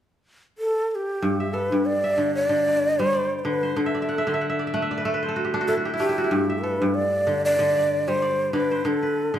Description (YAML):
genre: west african traditional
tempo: 94 BPM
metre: 4/4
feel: swing 56% on 16ths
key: G major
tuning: A4 = 440 Hz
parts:
  - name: breathy mellow shakuhachi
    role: melody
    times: 0.6-9.4 s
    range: G4 to D5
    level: -23 LUFS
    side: equal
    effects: none
  - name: kora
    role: arpeggios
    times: 1.2-9.4 s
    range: G2 to F#5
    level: -24 LUFS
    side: equal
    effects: none
room: moderate recital hall reverb, RT60 1.2 s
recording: none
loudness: -21 LUFS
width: side -10 dB against mid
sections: 0.0-1.2 A section; 1.2-9.4 B section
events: kora fill 3.8-6.3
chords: 0.0 N.C.; 1.2 G5; 3.8 D5; 6.3 G5; 8.9 D5